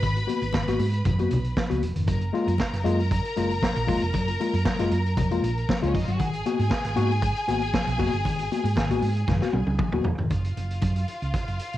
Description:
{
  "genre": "disco",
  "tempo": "117 BPM",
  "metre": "4/4",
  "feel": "straight",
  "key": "F# major",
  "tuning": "A4 = 440 Hz",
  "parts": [
    { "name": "bright studio string section", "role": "second line", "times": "0.0-11.8 s", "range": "C#4 to B5", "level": "-31 LUFS", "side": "left 1 dB", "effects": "cassette tape" },
    { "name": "tine electric piano", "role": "accompaniment", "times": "0.0-10.3 s", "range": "G#2 to F#4", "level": "-27 LUFS", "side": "left 4 dB", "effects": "medium stereo tremolo, cassette tape" },
    { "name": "hollow-body short-scale fingered electric bass", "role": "bass", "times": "0.0-11.8 s", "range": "D#1 to G#2", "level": "-26 LUFS", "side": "right 2 dB", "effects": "none" },
    { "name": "vintage drum kit", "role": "drums", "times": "0.0-11.8 s", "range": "hi-hat, kick drum, snare drum, toms", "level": "-29 LUFS", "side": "right 1 dB", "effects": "cassette tape" },
    { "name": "congas", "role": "percussion", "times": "0.0-11.5 s", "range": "none", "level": "-33 LUFS", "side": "left 4 dB", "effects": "none" }
  ],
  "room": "moderate small room reverb, RT60 0.5 s",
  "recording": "home recording on cassette",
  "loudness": "-22 LUFS",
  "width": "side -14 dB against mid",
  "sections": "0.0-10.3 A section; 10.3-11.8 B section",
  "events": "drum fill 9.3-10.3",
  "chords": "0.0 G#m9; 2.1 F#maj7; 6.2 G#m9; 10.3 F#maj7(no3)",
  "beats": "| 0.03 0.54 1.06 1.57 | 2.08 2.60 3.11 3.63 | 4.14 4.66 5.17 5.68 | 6.20 6.71 7.22 7.74 | 8.25 8.77 9.28 9.79 | 10.31 10.82 11.34"
}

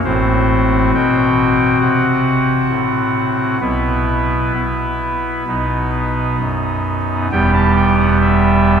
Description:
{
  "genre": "classical, chorale-style piece for pipe organ",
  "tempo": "66 BPM",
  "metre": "4/4",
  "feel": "rubato",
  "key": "E minor",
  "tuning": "A4 = 442 Hz",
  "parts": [
    { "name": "pipe organ, soft reed", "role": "solo", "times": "0.0-8.8 s", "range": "E1 to A5", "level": "-13 LUFS", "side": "equal", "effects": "none" }
  ],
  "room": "wet cathedral reverb, RT60 4.8 s",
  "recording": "heard from further back in the room",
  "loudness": "-13 LUFS",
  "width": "side -7 dB against mid",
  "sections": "0.0-7.3 A section; 7.3-8.8 B section",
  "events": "none",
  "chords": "0.0 F#dim/A; 3.6 E5/B; 5.5 B; 7.3 Em",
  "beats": "| 0.04 0.94 1.81 2.70 | 3.61 4.54 5.48 6.40 | 7.31 8.21"
}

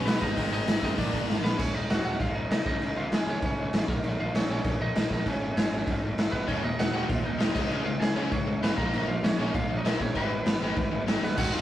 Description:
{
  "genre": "punk rock",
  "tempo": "196 BPM",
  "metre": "4/4",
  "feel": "straight",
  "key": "Eb minor",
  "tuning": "A4 = 445 Hz",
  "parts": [
    { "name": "lightly driven lead guitar", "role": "melody", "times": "0.0-11.6 s", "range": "Bb3 to Ab5", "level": "-33 LUFS", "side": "equal", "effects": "none" },
    { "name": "biting overdriven guitar", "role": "riff", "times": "0.0-1.6, 6.5-11.6 s", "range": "Eb2 to Db4", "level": "-33 LUFS", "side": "left 5 dB", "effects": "none" },
    { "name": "distorted electric guitar", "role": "riff", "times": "0.0-1.6, 6.5-11.6 s", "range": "Eb2 to F#4", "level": "-37 LUFS", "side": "right 5 dB", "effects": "none" },
    { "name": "fuzz picked electric bass", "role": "bass", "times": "0.1-11.6 s", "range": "Eb1 to Gb2", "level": "-33 LUFS", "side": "right 1 dB", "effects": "overdrive" },
    { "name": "raw garage drum kit", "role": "drums", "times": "0.1-11.4 s", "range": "crash cymbal, hi-hat, kick drum, snare drum", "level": "-27 LUFS", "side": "equal", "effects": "none" }
  ],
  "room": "light reverb",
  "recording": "rough rehearsal-room recording",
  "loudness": "-25 LUFS",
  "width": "side -13 dB against mid",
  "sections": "0.0-1.6 A section; 1.6-11.4 B section",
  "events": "drum fill 1.3-1.6, 11.2",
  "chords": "0.4 Abm; 1.0 Bb; 1.6 Ebm; 2.7 Db; 3.9 Bbm; 5.3 Abm; 6.5 Ebm; 7.6 Db5; 8.8 Bbm; 10.2 Abm",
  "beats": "0.06 | 0.37 0.67 0.98 1.28 | 1.59 1.90 2.20 2.51 | 2.81 3.12 3.42 3.73 | 4.04 4.34 4.65 4.95 | 5.26 5.57 5.87 6.18 | 6.48 6.79 7.09 7.40 | 7.71 8.01 8.32 8.62 | 8.93 9.24 9.54 9.85 | 10.15 10.46 10.77 11.07 | 11.38"
}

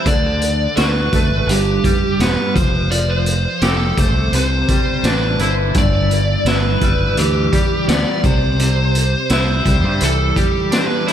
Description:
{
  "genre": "psychedelic rock",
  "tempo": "84 BPM",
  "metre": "4/4",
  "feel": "straight",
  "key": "unclear",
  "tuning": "A4 = 440 Hz",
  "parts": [
    { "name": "fuzz lead guitar", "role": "melody", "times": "0.0-11.1 s", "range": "G4 to D5", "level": "-20 LUFS", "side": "right 1 dB", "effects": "distortion, analog delay" },
    { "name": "semi-hollow electric guitar", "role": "riff", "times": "0.0-11.1 s", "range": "G2 to G4", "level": "-21 LUFS", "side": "equal", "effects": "tremolo, double-tracked left and right" },
    { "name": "growling fingered electric bass", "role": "bass", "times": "0.1-10.3 s", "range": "E1 to G2", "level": "-18 LUFS", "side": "equal", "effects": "overdrive" },
    { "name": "raw garage drum kit", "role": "drums", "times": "0.1-11.1 s", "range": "hi-hat, kick drum, snare drum", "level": "-19 LUFS", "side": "equal", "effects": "none" }
  ],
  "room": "moderate lush hall reverb, RT60 2.7 s",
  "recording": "dreamy mix soaked in reverb",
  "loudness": "-14 LUFS",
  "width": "side -9 dB against mid",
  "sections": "0.0-11.1 A section",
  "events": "none",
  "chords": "0.1 D; 1.5 G6; 2.6 Fadd9; 4.3 Cadd9; 5.8 G6; 8.2 Cadd9",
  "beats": "| 0.06 0.77 1.49 2.20 | 2.91 3.62 4.33 5.04 | 5.75 6.47 7.18 7.89 | 8.60 9.31 10.02 10.72"
}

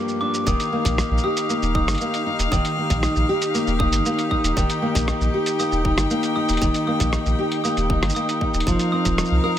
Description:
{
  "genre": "folktronica",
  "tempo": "117 BPM",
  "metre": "4/4",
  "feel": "straight",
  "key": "Eb major",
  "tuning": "A4 = 440 Hz",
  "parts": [
    { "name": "dark string quartet", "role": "sustained chords", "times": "0.0-9.6 s", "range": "F3 to G5", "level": "-27 LUFS", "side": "left 2 dB", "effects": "none" },
    { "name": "nylon-string guitar", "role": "arpeggios", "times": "0.0-9.6 s", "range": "G2 to Bb4", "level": "-23 LUFS", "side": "left 1 dB", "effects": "vintage 12-bit sampler grit, ping-pong delay" },
    { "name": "lo-fi sampler-style drum kit", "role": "drums", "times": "0.1-9.3 s", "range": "hi-hat, rim click, shaker", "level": "-27 LUFS", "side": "right 1 dB", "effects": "none" },
    { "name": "glockenspiel with soft plastic mallets", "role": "second line", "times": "0.2-9.6 s", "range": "D6 to Eb6", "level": "-27 LUFS", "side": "right 1 dB", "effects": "ping-pong delay" },
    { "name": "warm sub bass", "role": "bass", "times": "0.5-9.4 s", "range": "Eb1 to C2", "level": "-23 LUFS", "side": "equal", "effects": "none" },
    { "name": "electronic kick drum", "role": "drums", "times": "0.5-9.2 s", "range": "none", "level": "-24 LUFS", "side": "equal", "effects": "none" }
  ],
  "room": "studio ambience",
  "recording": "none",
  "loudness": "-19 LUFS",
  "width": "side -11 dB against mid",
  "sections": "0.5-9.6 A section",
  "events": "none",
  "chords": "0.5 Ebadd9; 8.7 F7sus4",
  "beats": "| 0.46 0.98 1.49 2.00 | 2.52 3.03 3.54 4.05 | 4.57 5.08 5.59 6.11 | 6.62 7.13 7.64 8.16 | 8.67 9.18"
}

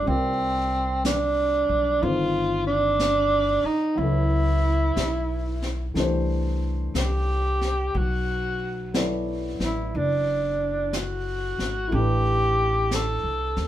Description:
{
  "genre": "jazz ballad",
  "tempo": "61 BPM",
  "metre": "4/4",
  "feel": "swing 66% on 8ths",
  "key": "unclear",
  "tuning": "A4 = 441 Hz",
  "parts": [
    { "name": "breathy tenor saxophone", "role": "melody", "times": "0.0-13.7 s", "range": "C4 to A4", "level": "-24 LUFS", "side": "right 1 dB", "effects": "none" },
    { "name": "warm concert grand piano", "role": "accompaniment", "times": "0.0-13.7 s", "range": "Eb3 to D5", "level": "-31 LUFS", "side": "left 1 dB", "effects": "none" },
    { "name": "upright bass", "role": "bass", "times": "0.0-13.7 s", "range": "F#1 to Eb2", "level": "-26 LUFS", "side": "equal", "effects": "none" },
    { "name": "jazz brush drum kit", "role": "drums", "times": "0.1-13.7 s", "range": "brushed snare drum, hi-hat, snare drum", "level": "-31 LUFS", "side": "left 1 dB", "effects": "none" }
  ],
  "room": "wet studio reverb, RT60 0.7 s",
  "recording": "band playing live in one room",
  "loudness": "-22 LUFS",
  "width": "side -12 dB against mid",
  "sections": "0.0-13.7 A section",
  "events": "none",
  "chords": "0.1 Cm11; 4.0 B9sus4; 6.0 Cadd9; 8.0 Bm7; 11.9 Am9",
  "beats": "| 0.07 1.05 2.03 3.01 | 3.99 4.97 5.96 6.95 | 7.95 8.95 9.94 10.93 | 11.92 12.90"
}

